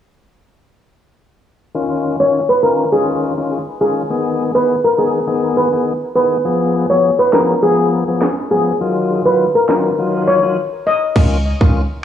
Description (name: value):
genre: dancehall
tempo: 102 BPM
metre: 4/4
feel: straight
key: unclear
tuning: A4 = 440 Hz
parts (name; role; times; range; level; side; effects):
- tonewheel organ; accompaniment; 1.7-11.8 s; Eb3 to Ab4; -18 LUFS; left 4 dB; overdrive, sidechain pumping, cassette tape
- steel pan; melody; 2.2-11.0 s; Ab4 to Eb5; -15 LUFS; equal; cassette tape, tape echo
- island pop drum kit; drums; 7.3-11.7 s; crash cymbal, finger snaps, kick drum, rim click, snare drum; -17 LUFS; right 1 dB; cassette tape
- warm 808-style bass; bass; 11.2-11.9 s; Db2; -16 LUFS; right 1 dB; none
room: moderate spring reverb, RT60 2.2 s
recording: home recording on cassette, low-pass filter, small room reverb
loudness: -13 LUFS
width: side -10 dB against mid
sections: 1.7-11.2 A section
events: filter sweep 1.7-11.2; break 10.6-11.2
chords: 1.7 Dbadd9; 4.1 Abm; 6.5 Fdim; 8.8 Ebmadd9; 11.2 Dbadd9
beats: | 1.75 2.34 2.92 3.51 | 4.10 4.69 5.28 5.87 | 6.45 7.04 7.63 8.22 | 8.81 9.39 9.98 10.57 | 11.16 11.75